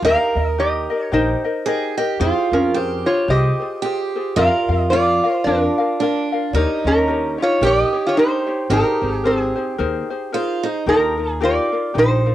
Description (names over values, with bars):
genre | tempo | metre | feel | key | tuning
Hawaiian | 111 BPM | 4/4 | swing 58% on 8ths | Ab major | A4 = 439 Hz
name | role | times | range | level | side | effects
picked steel-string acoustic guitar | second line | 0.0-10.8 s | D4 to Bb4 | -23 LUFS | right 6 dB | cassette tape
ukulele | accompaniment | 0.0-12.3 s | Eb4 to F5 | -24 LUFS | left 6 dB | cassette tape
upright bass | bass | 0.0-12.3 s | Ab1 to F2 | -22 LUFS | equal | none
metal-body resonator slide guitar | melody | 0.1-12.3 s | C4 to F5 | -18 LUFS | equal | none
room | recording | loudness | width
moderate booth ambience, RT60 0.2 s | home recording on cassette | -16 LUFS | side -13 dB against mid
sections
0.0-10.9 A section; 10.9-12.3 B section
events
none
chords
0.0 Eb; 2.2 Fmadd9; 4.4 Bb/F; 6.5 Eb7; 8.7 Abadd9; 10.9 Ebadd9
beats
| 0.04 0.59 1.13 1.67 | 2.21 2.75 3.29 3.83 | 4.38 4.92 5.46 6.00 | 6.54 7.08 7.62 8.16 | 8.70 9.24 9.78 10.32 | 10.86 11.40 11.94